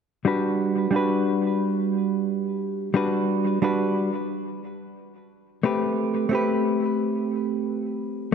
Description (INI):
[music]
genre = chillout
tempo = 89 BPM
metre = 4/4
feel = swing 54% on 16ths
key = G major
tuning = A4 = 440 Hz
[part]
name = hollow-body jazz guitar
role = accompaniment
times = 0.2-8.3 s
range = G3 to B4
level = -22 LUFS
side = moving between left 4 dB and right 5 dB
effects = auto-pan, vintage 12-bit sampler grit, low-pass filter, digital delay
[sound]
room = wet lush hall reverb, RT60 2.5 s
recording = none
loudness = -22 LUFS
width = side -6 dB against mid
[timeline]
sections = 0.0-8.3 A section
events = none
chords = 0.0 Gmaj7; 4.1 Am9